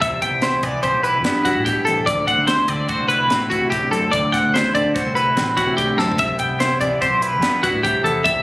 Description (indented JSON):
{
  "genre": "math rock and midwest emo",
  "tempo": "146 BPM",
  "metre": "5/4",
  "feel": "straight",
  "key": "unclear",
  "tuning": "A4 = 440 Hz",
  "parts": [
    { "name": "twangy electric guitar", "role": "accompaniment", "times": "0.0-8.4 s", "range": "D2 to G4", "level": "-23 LUFS", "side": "right 1 dB", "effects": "spring reverb" },
    { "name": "twelve-string electric guitar", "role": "arpeggios", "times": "0.0-8.4 s", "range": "F#4 to G5", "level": "-18 LUFS", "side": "left 1 dB", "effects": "none" },
    { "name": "growling fingered electric bass", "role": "bass", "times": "0.0-8.4 s", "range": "A1 to D3", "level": "-26 LUFS", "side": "equal", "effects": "overdrive" },
    { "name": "crisp fusion drum kit", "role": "drums", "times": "0.0-8.3 s", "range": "hi-hat, kick drum, snare drum, toms", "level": "-26 LUFS", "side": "equal", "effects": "none" }
  ],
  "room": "light reverb",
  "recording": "recorded on a phone in the room, club reverb, compression",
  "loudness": "-16 LUFS",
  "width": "side -20 dB against mid",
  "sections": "0.0-8.4 A section",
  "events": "drum fill 6.0",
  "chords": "0.0 D9; 6.2 Cmaj7"
}